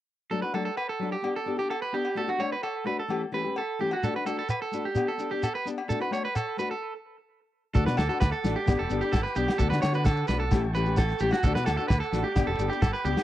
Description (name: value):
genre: highlife guitar band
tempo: 129 BPM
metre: 4/4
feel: straight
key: D major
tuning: A4 = 441 Hz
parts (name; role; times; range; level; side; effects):
- nylon-string guitar; accompaniment; 0.3-13.2 s; E3 to G4; -31 LUFS; left 5 dB; none
- electric guitar at the edge of break-up; arpeggios; 0.3-13.2 s; F#4 to C#5; -30 LUFS; right 4 dB; tape echo
- agogo bells; percussion; 0.5-13.2 s; none; -37 LUFS; left 5 dB; none
- shekere; percussion; 4.0-13.2 s; none; -31 LUFS; right 2 dB; none
- tonewheel organ; sustained chords; 7.8-13.2 s; F#5 to D6; -40 LUFS; equal; slow rotary speaker
- fingered electric bass; bass; 7.8-13.1 s; E1 to D3; -29 LUFS; equal; none
- warm soul drum kit; drums; 7.8-13.2 s; kick drum, snare drum; -26 LUFS; equal; none
room: little or no reverb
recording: dry, close 1970s-style studio recording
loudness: -25 LUFS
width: side -13 dB against mid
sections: 0.3-7.8 A section; 7.8-13.2 B section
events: stop 6.8-7.8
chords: 0.3 D; 1.2 G; 2.2 D; 3.1 A7; 4.0 D; 5.0 G; 5.9 D; 6.8 N.C.; 7.8 D; 8.7 G; 9.6 D; 10.5 A7; 11.4 D; 12.4 G